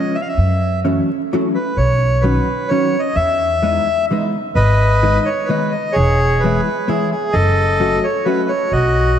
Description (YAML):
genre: musette waltz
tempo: 129 BPM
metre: 3/4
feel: straight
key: E major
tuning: A4 = 440 Hz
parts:
  - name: accordion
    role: melody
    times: 0.0-9.2 s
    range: F#4 to E#5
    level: -17 LUFS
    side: equal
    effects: analog delay
  - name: hollow-body jazz guitar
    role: accompaniment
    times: 0.0-8.5 s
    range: D#3 to F#4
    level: -20 LUFS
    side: equal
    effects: ensemble chorus
  - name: upright bass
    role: bass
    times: 0.4-9.2 s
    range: E1 to F#2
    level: -17 LUFS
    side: equal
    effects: none
room: wet church reverb, RT60 3.5 s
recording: dreamy mix soaked in reverb, vinyl crackle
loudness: -14 LUFS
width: side -9 dB against mid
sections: 0.0-4.6 A section; 4.6-9.2 B section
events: none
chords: 0.4 F#m7; 1.8 Badd9; 3.2 Emaj7; 4.6 G#m; 6.0 E; 7.3 F#m